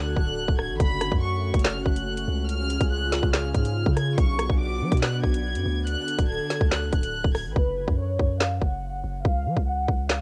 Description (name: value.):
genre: hip hop, drill.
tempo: 142 BPM.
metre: 4/4.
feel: half-time.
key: F# harmonic minor.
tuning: A4 = 440 Hz.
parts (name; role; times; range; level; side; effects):
warm studio violin section; melody; 0.0-10.2 s; B4 to G#6; -34 LUFS; equal; low-pass filter, cassette tape.
airy breathy pad; sustained chords; 0.0-7.5 s; C#3 to A4; -34 LUFS; equal; chorus, cassette tape.
long sustained 808-style bass; bass; 0.0-10.2 s; D1 to F#3; -30 LUFS; equal; none.
drill drum kit; drums; 0.2-10.2 s; handclaps, hi-hat, kick drum, rim click, snare drum; -26 LUFS; equal; cassette tape.
room: little or no reverb.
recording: home recording on cassette.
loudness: -25 LUFS.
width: mono.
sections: 0.0-7.6 A section; 7.6-10.2 B section.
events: break 0.0-0.8; hi-hats muted 7.6-10.2; filter sweep on violin section 7.6-10.2.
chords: 0.0 D; 0.8 F#m; 2.5 C#; 4.2 Bm; 5.9 D; 7.6 F#5; 9.2 C#.